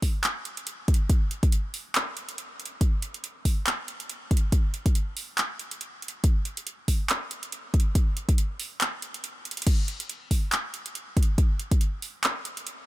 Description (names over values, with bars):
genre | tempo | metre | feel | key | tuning
future bass | 140 BPM | 4/4 | swing 56% on 16ths, half-time | none | none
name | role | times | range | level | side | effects
dubstep drum kit | drums | 0.0-12.8 s | crash cymbal, handclaps, hi-hat | -30 LUFS | right 1 dB | none
electronic kick drum | drums | 0.0-11.8 s | none | -22 LUFS | equal | none
room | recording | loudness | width
little or no reverb | none | -24 LUFS | side -17 dB against mid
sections
0.0-12.9 A section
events
drum fill 9.5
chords
none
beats
0.24 0.67 | 1.09 1.52 1.95 2.38 | 2.81 3.24 3.67 4.09 | 4.52 4.95 5.38 5.81 | 6.24 6.67 7.09 7.52 | 7.95 8.38 8.81 9.24 | 9.67 10.10 10.52 10.95 | 11.38 11.81 12.24 12.67